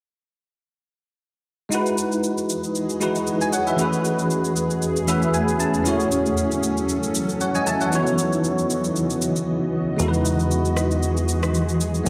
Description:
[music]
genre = amapiano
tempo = 116 BPM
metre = 4/4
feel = swing 55% on 16ths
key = E major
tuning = A4 = 442 Hz
[part]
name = bell-like tine electric piano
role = accompaniment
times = 1.7-12.1 s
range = E3 to A5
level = -25 LUFS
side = equal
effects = ensemble chorus
[part]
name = granular cloud pad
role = sustained chords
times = 2.5-12.1 s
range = E2 to D#5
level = -27 LUFS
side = equal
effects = built-in reverb
[part]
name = electronic shaker and rim click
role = drums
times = 1.7-12.1 s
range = none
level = -32 LUFS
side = equal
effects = none
[part]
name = plucky analog bass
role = bass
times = 10.0-12.1 s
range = E2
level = -25 LUFS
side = equal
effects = none
[sound]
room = wet plate reverb, RT60 2.2 s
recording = dreamy mix soaked in reverb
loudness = -22 LUFS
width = mono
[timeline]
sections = 1.7-12.1 A section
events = tine electric piano fill 4.8-5.9; silent gap 9.5-10.0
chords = 1.7 Emaj9; 3.8 Amaj13/E; 5.9 F#m7; 7.9 C#m11; 10.0 Emaj9

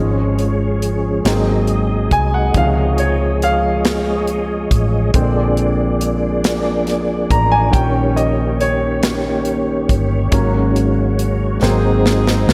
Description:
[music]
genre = slow gospel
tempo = 46 BPM (dotted quarters)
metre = 6/8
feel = straight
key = Db major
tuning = A4 = 440 Hz
[part]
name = clear baby grand piano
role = accompaniment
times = 0.0-12.5 s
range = C3 to Bb5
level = -23 LUFS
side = equal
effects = none
[part]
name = tonewheel organ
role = sustained chords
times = 0.0-12.5 s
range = Eb3 to Eb5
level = -21 LUFS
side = equal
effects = chorus vibrato, slow rotary speaker
[part]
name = hollow-body short-scale fingered electric bass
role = bass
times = 0.0-12.5 s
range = G1 to D2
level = -21 LUFS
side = equal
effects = none
[part]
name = tight funk drum kit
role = drums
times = 0.4-12.5 s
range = hi-hat, kick drum, snare drum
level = -22 LUFS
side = equal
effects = none
[part]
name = mellow saxophone section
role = melody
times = 11.7-12.5 s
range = C4 to Ab4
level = -22 LUFS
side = equal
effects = tape echo
[sound]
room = moderate lush hall reverb, RT60 2.4 s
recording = dreamy mix soaked in reverb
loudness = -16 LUFS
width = mono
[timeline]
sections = 0.0-12.5 A section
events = grand piano solo 0.0-12.5; drum fill 11.6-12.5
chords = 0.0 Db/Ab; 1.3 Ab7; 2.5 Dbmaj7; 5.1 Bb7; 7.7 Eb7/Bb; 10.3 Ab7sus4; 11.6 Ab7

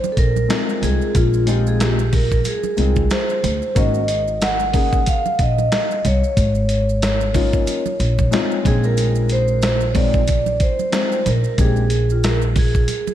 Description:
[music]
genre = hip hop, jazz-hop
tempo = 92 BPM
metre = 4/4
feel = swing 57% on 16ths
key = unclear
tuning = A4 = 440 Hz
[part]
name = vibraphone with medium mallets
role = melody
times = 0.0-13.1 s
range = F4 to Gb5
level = -21 LUFS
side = right 1 dB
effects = analog delay
[part]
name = congas and maracas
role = percussion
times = 0.0-13.1 s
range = none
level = -32 LUFS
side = right 10 dB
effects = none
[part]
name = upright bass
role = bass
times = 0.2-12.8 s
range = Ab1 to D2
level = -19 LUFS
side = equal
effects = none
[part]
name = dusty soul sampler-style drum kit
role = drums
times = 0.2-13.1 s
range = hi-hat, kick drum, snare drum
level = -21 LUFS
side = equal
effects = none
[part]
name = dark grand piano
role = accompaniment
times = 0.5-11.8 s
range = Ab3 to Ab4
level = -25 LUFS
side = left 5 dB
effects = analog chorus
[sound]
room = moderate plate reverb, RT60 3.5 s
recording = dreamy mix soaked in reverb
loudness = -15 LUFS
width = side -11 dB against mid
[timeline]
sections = 0.0-13.1 A section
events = none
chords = 0.0 Bb9sus4; 3.8 Absus4; 8.7 Bb9sus4

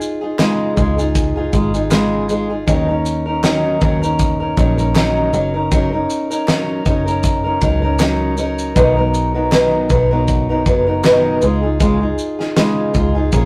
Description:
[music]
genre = acoustic pop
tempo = 79 BPM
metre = 4/4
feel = swing 55% on 16ths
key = unclear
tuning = A4 = 441 Hz
[part]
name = fingerpicked steel-string acoustic guitar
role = accompaniment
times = 0.0-13.5 s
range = B2 to Bb4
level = -18 LUFS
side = equal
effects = none
[part]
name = loose indie drum kit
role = drums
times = 0.0-13.5 s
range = kick drum, shaker, snare drum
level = -21 LUFS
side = equal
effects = none
[part]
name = group handclap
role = percussion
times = 0.4-12.8 s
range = none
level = -32 LUFS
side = equal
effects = none
[part]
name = vintage muted picked electric bass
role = bass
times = 0.8-13.5 s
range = Gb1 to Eb2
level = -22 LUFS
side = equal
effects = none
[sound]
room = moderate studio reverb, RT60 0.6 s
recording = rough rehearsal-room recording, tube saturation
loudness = -16 LUFS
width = mono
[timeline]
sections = 0.0-13.5 A section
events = none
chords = 0.0 Dbadd9; 2.7 Ebm7; 5.3 Gb6; 8.8 Bmaj7; 11.4 Dbadd9

